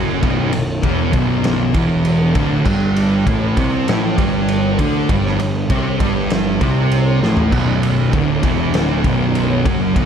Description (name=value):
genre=stoner and doom metal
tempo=99 BPM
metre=4/4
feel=straight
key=B phrygian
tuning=A4 = 440 Hz
part: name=thick fuzz guitar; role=riff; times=0.0-10.1 s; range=B1 to D4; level=-20 LUFS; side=left 9 dB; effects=distortion
part: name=thick fuzz guitar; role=riff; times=0.0-10.1 s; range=B1 to D4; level=-19 LUFS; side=right 9 dB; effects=distortion
part: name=fuzz picked electric bass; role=bass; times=0.0-10.1 s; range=B0 to D2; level=-22 LUFS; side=equal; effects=overdrive
part: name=raw garage drum kit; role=drums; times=0.2-10.1 s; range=crash cymbal, kick drum, ride cymbal, snare drum, toms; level=-20 LUFS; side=equal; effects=none
room=light reverb, studio ambience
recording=dark, warm production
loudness=-14 LUFS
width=side -8 dB against mid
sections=0.0-10.1 A section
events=drum fill 7.2-7.5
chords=0.0 Bm; 2.7 G5; 7.5 Bm